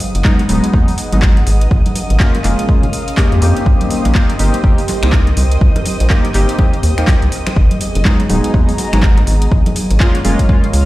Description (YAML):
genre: deep house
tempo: 123 BPM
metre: 4/4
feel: swing 60% on 16ths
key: C phrygian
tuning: A4 = 440 Hz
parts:
  - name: warbly tape-like pad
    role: sustained chords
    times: 0.0-10.9 s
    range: Bb3 to Gb5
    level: -27 LUFS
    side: right 1 dB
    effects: chorus, built-in reverb, phaser, sidechain pumping
  - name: deep house drum kit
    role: drums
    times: 0.0-10.9 s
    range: finger snaps, handclaps, hi-hat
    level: -23 LUFS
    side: equal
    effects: overdrive
  - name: congas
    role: percussion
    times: 0.0-10.6 s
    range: none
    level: -23 LUFS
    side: right 1 dB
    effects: none
  - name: airy breathy pad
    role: texture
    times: 0.0-10.9 s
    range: Ab4 to C6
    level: -29 LUFS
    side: equal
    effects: chorus, sidechain pumping
  - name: soft string machine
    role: texture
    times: 0.0-10.9 s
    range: Eb5 to Eb6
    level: -30 LUFS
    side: left 1 dB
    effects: ensemble chorus, sidechain pumping
  - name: rubbery square bass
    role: bass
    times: 0.1-10.9 s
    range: Eb1 to F2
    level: -13 LUFS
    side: equal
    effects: sidechain pumping
  - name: chorused polysynth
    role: stabs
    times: 0.2-10.7 s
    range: Gb3 to G4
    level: -19 LUFS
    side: equal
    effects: sidechain pumping, dub echo
  - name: electronic kick drum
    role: drums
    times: 0.2-10.6 s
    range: none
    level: -12 LUFS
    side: equal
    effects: overdrive
room: digital ambience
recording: played on a big sound system in a bare room, large studio reverb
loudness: -11 LUFS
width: side -17 dB against mid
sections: 0.0-10.9 A section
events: fade-in on analog synth pad 0.0-10.9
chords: 0.0 Abm7; 1.7 Bbm7; 3.7 Cm7; 7.6 Abm7; 9.5 Bbm7